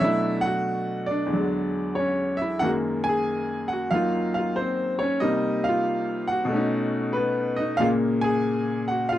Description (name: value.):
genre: solo jazz.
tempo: 92 BPM.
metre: 4/4.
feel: swing 67% on 8ths.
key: unclear.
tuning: A4 = 440 Hz.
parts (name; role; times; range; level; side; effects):
bright upright piano; solo; 0.0-9.2 s; E2 to Ab5; -22 LUFS; equal; none.
room: small room ambience.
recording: dry, close 1970s-style studio recording.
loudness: -22 LUFS.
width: side -13 dB against mid.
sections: 0.0-9.2 A section.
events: none.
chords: 0.0 Cbm7; 1.3 E9; 2.6 Gb69; 5.2 Cm7; 6.5 Cb9; 7.8 Bbm7.